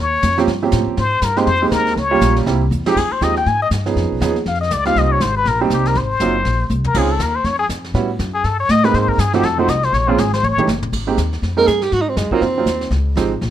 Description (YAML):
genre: jazz, small-group swing and bop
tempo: 241 BPM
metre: 4/4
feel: swing 58% on 8ths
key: Ab major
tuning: A4 = 439 Hz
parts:
  - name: trumpet with plunger mute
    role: melody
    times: 0.0-10.7 s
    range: Eb4 to Ab5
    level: -18 LUFS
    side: left 4 dB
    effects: plate reverb
  - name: upright bass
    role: bass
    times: 0.0-13.5 s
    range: Gb1 to A2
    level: -19 LUFS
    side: left 1 dB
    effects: none
  - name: vintage brush drum kit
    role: drums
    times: 0.2-13.5 s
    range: brushed snare drum, crash cymbal, hi-hat, kick drum, snare drum, toms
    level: -28 LUFS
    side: equal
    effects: none
  - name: warm upright piano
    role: accompaniment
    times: 0.4-13.3 s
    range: E3 to Bb4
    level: -19 LUFS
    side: right 6 dB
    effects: plate reverb
  - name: breathy alto saxophone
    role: second line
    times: 11.6-12.9 s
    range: Ab3 to Bb4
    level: -17 LUFS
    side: right 3 dB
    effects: plate reverb
room: light reverb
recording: rough home demo mix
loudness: -14 LUFS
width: side -11 dB against mid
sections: 0.0-3.0 A section; 3.0-10.9 A section; 10.9-13.5 A section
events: muted trumpet solo 0.0-10.9; drum fill 2.7, 6.7, 10.4-10.9; alto saxophone solo 10.9-13.5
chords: 0.0 Eb13; 1.0 Abmaj9; 2.0 Gm7b5; 2.5 C7; 3.0 Fm9; 4.0 Db9; 5.0 Cm7; 6.0 Ab13; 7.0 Dbmaj9; 7.9 A13; 8.9 Abmaj9; 9.4 F7b9; 9.9 Bbm7; 10.4 A7#11; 10.9 Abmaj9; 11.9 Ab13; 12.9 Dbmaj9#11